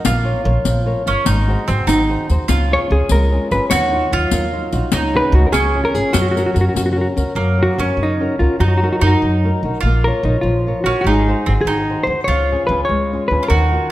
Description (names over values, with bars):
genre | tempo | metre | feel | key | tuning
italian folk, Italian serenade | 98 BPM (dotted quarters) | 6/8 | straight | F# major | A4 = 439 Hz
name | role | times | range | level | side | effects
bowl-back mandolin | second line | 0.0-13.9 s | A#3 to F#4 | -21 LUFS | right 3 dB | none
flamenco guitar | accompaniment | 0.0-13.9 s | C#3 to C#5 | -22 LUFS | left 2 dB | none
upright bass | bass | 0.0-13.8 s | G1 to F#2 | -17 LUFS | equal | none
riq | percussion | 0.0-7.3 s | none | -24 LUFS | left 5 dB | none
hollow-body jazz guitar | melody | 2.7-13.9 s | C#4 to C#5 | -19 LUFS | equal | none
room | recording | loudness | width
wet recital hall reverb, RT60 1.6 s | none | -14 LUFS | side -15 dB against mid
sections
0.0-7.4 A section; 7.4-13.9 A section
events
none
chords
0.1 A#m; 1.3 G#7; 2.5 C#; 3.7 D#madd9; 4.9 C#sus4; 5.5 C#; 6.1 F#; 8.6 D#m/F#; 9.8 A#m; 11.0 G#7; 12.3 C#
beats
| 0.06 0.66 | 1.27 1.88 | 2.49 3.10 | 3.71 4.32 | 4.92 5.53 | 6.14 6.75 | 7.37 7.98 | 8.60 9.21 | 9.82 10.43 | 11.04 11.66 | 12.28 12.89 | 13.51